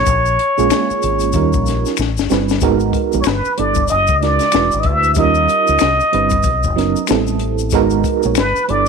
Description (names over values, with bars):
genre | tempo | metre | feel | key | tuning
R&B, neo-soul | 94 BPM | 4/4 | swing 60% on 16ths | unclear | A4 = 440 Hz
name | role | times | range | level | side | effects
trumpet with plunger mute | melody | 0.0-8.9 s | B4 to E5 | -16 LUFS | equal | none
FM electric piano with tremolo | accompaniment | 0.0-8.9 s | C#3 to C#5 | -18 LUFS | right 12 dB | none
deep dub fingered electric bass | bass | 0.0-8.9 s | E1 to D#2 | -20 LUFS | left 2 dB | transformer saturation
compact cocktail drum kit | drums | 0.1-8.9 s | hi-hat, kick drum, snare drum | -20 LUFS | left 7 dB | none
tube shaker and finger snaps | percussion | 0.1-8.9 s | none | -27 LUFS | left 17 dB | none
room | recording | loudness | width
light reverb, small room ambience | 1960s-style stereo with parts hard left and right | -13 LUFS | side -5 dB against mid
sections
0.0-2.6 A section; 2.6-8.9 B section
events
drum fill 2.0-2.6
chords
0.1 A#m7; 1.3 D#9; 2.0 Am11; 2.6 G#m9; 3.3 G69; 3.9 F#69; 4.5 E9; 5.2 D#9; 5.8 Cmaj9; 6.4 Bmaj9; 7.1 Am9; 7.7 G#m9; 8.4 G69